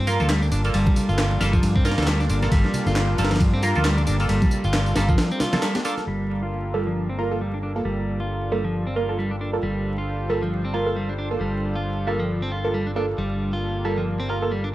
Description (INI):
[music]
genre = breakbeat, breaks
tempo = 135 BPM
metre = 4/4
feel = swing 57% on 16ths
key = G minor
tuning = A4 = 440 Hz
[part]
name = lush unison pad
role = sustained chords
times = 0.0-14.7 s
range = G3 to C5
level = -31 LUFS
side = equal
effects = chorus, sidechain pumping
[part]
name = clean electric guitar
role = riff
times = 0.0-14.7 s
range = F3 to F4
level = -27 LUFS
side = equal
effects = tube saturation, low-pass filter, dub echo
[part]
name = fingered electric bass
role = bass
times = 0.0-14.7 s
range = G1 to G2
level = -25 LUFS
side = equal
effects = tube saturation, low-pass filter
[part]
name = band-passed chord stab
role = stabs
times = 0.1-14.5 s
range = Bb3 to Bb4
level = -28 LUFS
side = right 2 dB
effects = phaser, dub echo
[part]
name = breakbeat sampler-style drum kit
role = drums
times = 0.1-6.1 s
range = kick drum, ride cymbal, snare drum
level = -24 LUFS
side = equal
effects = studio reverb
[part]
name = electronic tambourine and handclaps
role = drums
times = 0.1-6.1 s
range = none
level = -34 LUFS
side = equal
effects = low-pass filter on snare, studio reverb, low-pass filter on perc, low-pass filter on room
[part]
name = congas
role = percussion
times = 0.1-6.1 s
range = none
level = -29 LUFS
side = equal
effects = none
[sound]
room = little or no reverb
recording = vinyl crackle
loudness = -20 LUFS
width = side -15 dB against mid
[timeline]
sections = 0.0-6.1 A section; 6.1-14.7 B section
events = break 5.2-6.1; filter sweep on clean electric guitar 6.1-14.7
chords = 0.0 Gm9